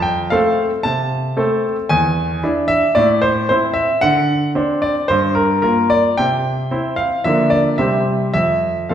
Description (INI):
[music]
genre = classical-period piano sonatina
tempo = 112 BPM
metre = 4/4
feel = straight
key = F major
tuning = A4 = 440 Hz
[part]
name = bright baby grand piano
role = solo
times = 0.0-8.9 s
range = E2 to A5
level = -14 LUFS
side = equal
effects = none
[sound]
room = wet recital hall reverb, RT60 1.4 s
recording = heard from further back in the room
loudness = -14 LUFS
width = side -9 dB against mid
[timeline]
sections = 0.0-8.9 A section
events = none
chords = 0.0 F; 1.9 E7; 3.0 Am; 4.0 D7; 5.1 Gm7; 6.2 C; 7.2 Bb/D; 7.8 C; 8.3 N.C.